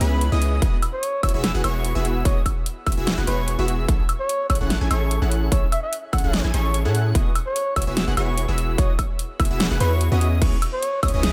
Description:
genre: future bass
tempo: 147 BPM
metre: 4/4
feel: swing 53% on 16ths, half-time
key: E major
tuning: A4 = 440 Hz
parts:
  - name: airy dreamy lead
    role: arpeggios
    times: 0.0-11.3 s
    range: B5 to G#6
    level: -36 LUFS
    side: equal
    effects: chorus, sidechain pumping, dub echo
  - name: supersaw stab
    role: riff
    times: 0.0-11.3 s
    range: B3 to G#5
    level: -31 LUFS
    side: equal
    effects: sidechain pumping, dub echo
  - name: long sustained 808-style bass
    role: bass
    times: 0.0-11.3 s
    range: E1 to A2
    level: -25 LUFS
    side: equal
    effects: sidechain pumping
  - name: big-room dance drum kit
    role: drums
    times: 0.0-11.3 s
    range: crash cymbal, hi-hat, snare drum, woodblock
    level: -28 LUFS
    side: equal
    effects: none
  - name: electronic kick drum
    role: drums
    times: 0.6-11.1 s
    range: none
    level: -24 LUFS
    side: equal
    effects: none
  - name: trumpet with bucket mute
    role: melody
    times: 0.9-11.2 s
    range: F#4 to F#5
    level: -30 LUFS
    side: equal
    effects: sidechain pumping, delay
room: light reverb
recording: none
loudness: -22 LUFS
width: mono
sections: 0.0-11.3 A section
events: kick drops out 3.5-3.9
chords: 0.0 C#m7; 0.6 Emaj9; 3.9 Amaj7; 7.2 Emaj9; 10.2 C#m7

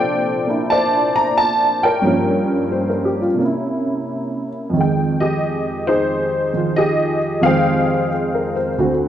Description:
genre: solo jazz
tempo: 89 BPM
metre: 4/4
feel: swing 68% on 8ths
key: F minor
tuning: A4 = 440 Hz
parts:
  - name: honky-tonk upright piano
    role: solo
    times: 0.0-9.1 s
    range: D2 to Bb5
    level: -16 LUFS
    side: equal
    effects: none
room: wet large studio reverb, RT60 1.2 s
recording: dark, warm production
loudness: -16 LUFS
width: side -10 dB against mid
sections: 0.0-9.1 A section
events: none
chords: 0.0 Bbmaj9; 2.0 Gm7b5; 3.4 C7b9; 4.7 Fm9

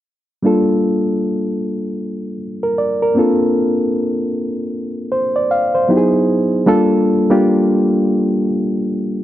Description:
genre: R&B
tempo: 77 BPM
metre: 4/4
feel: swing 62% on 16ths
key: G minor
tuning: A4 = 438 Hz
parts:
  - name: reed electric piano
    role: solo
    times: 0.4-9.2 s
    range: F#3 to F5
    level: -14 LUFS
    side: equal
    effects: none
room: digital ambience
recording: dry, close 1970s-style studio recording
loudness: -14 LUFS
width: side -13 dB against mid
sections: 0.4-6.7 A section; 6.7-9.2 B section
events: none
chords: 0.4 Gm9; 3.2 Bbmaj9; 5.9 Emaj7; 6.7 Gm9

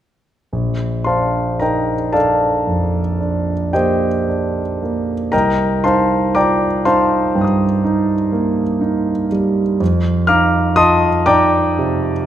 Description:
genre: classical, impressionist solo piano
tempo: 37-41 BPM (dotted quarters)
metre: 9/8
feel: rubato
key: Bb major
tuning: A4 = 441 Hz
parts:
  - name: warm concert grand piano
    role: solo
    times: 0.5-12.3 s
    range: Bb1 to F6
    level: -14 LUFS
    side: equal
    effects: none
room: wet recital hall reverb, RT60 1.4 s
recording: none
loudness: -14 LUFS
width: side -11 dB against mid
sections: 0.5-12.3 A section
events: none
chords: 0.5 Bbmaj7; 5.3 Cm7; 9.8 F9sus4

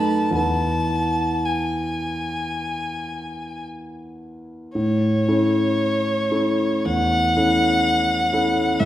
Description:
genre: classical, romantic duo for violin and grand piano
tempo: 53-63 BPM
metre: 4/4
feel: rubato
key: A major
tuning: A4 = 435 Hz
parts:
  - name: warm violin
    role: melody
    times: 0.0-8.9 s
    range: C#5 to A5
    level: -23 LUFS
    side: left 1 dB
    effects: none
  - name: warm grand piano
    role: accompaniment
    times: 0.0-8.9 s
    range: E2 to B4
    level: -21 LUFS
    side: equal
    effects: none
room: wet recital hall reverb, RT60 1.5 s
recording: heard from further back in the room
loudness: -18 LUFS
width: side -13 dB against mid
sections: 0.0-8.9 A section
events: none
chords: 0.4 E; 4.8 A

